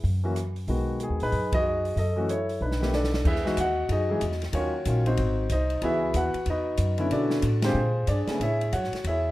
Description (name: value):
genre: jazz piano trio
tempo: 186 BPM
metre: 4/4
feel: swing 63% on 8ths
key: B major, E major from 3.3 s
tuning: A4 = 440 Hz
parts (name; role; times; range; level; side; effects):
- upright bass; bass; 0.0-9.3 s; G#1 to B2; -27 LUFS; equal; none
- open jazz drum kit; drums; 0.0-9.1 s; crash cymbal, hi-hat, kick drum, ride cymbal, rim click, snare drum; -33 LUFS; equal; none
- warm grand piano; melody; 0.2-9.3 s; C#3 to F#5; -26 LUFS; equal; none
room: moderate digital room reverb, RT60 1.1 s, small room ambience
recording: rough home demo mix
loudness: -24 LUFS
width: side -17 dB against mid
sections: 0.0-3.3 A section; 3.3-9.3 B section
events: band accent 1.5, 7.6; drum fill 2.6-3.3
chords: 0.0 N.C.; 0.7 B6; 2.0 F#m7; 2.6 B7#9; 3.3 Emaj9; 4.5 D#m9; 5.2 G#7; 5.8 C#m11; 7.1 Bm9; 7.8 A#13; 8.4 Amaj7